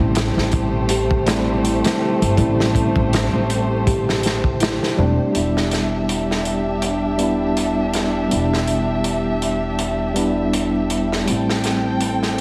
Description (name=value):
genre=trip hop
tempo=81 BPM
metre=4/4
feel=swing 55% on 16ths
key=E minor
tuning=A4 = 440 Hz
part: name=tine electric piano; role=accompaniment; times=0.0-12.4 s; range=G3 to E4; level=-24 LUFS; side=equal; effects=harmonic tremolo, tape echo
part: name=warm studio violin section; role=sustained chords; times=0.0-12.4 s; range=A3 to G5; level=-26 LUFS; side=equal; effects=none
part: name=large celesta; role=arpeggios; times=0.0-5.4 s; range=E4 to G4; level=-28 LUFS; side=equal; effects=vintage 12-bit sampler grit, delay
part: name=upright bass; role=bass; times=0.0-12.4 s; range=E1 to A1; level=-26 LUFS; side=equal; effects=none
part: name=crunchy breakbeat drum kit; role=drums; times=0.2-12.4 s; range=hi-hat, kick drum, snare drum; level=-25 LUFS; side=equal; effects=high-pass filter on kick, high-pass filter on hats, high-pass filter on snare, high-pass filter on room
room=light reverb, small room ambience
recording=heavily compressed radio sound, vinyl crackle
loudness=-19 LUFS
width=mono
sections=0.0-5.3 A section; 5.3-12.4 B section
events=none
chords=0.0 Am7; 5.3 Em7; 11.3 Am7